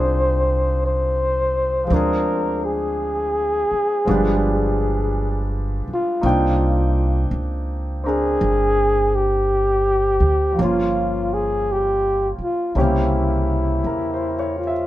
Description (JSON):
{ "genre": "jazz ballad", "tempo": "55 BPM", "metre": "4/4", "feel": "swing 66% on 8ths", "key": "C minor", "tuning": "A4 = 439 Hz", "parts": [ { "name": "breathy flugelhorn", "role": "melody", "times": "0.0-14.9 s", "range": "Eb4 to C5", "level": "-20 LUFS", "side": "left 1 dB", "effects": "none" }, { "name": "clear baby grand piano", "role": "accompaniment", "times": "0.0-14.9 s", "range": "Db3 to G5", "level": "-24 LUFS", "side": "equal", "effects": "none" }, { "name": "upright bass", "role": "bass", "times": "0.0-14.9 s", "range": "G1 to E2", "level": "-22 LUFS", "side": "equal", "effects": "none" } ], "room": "light reverb", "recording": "band playing live in one room", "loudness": "-18 LUFS", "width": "side -14 dB against mid", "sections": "0.0-14.9 A section", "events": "none", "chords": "0.0 Fm7; 1.9 Dm7b5; 4.1 G7b9; 6.2 Cm9; 10.6 Gm7b5; 12.8 C7b9", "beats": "0.81 | 1.89 2.98 4.06 5.15 | 6.24 7.32 8.41 9.49 | 10.58 11.66 12.75 13.84" }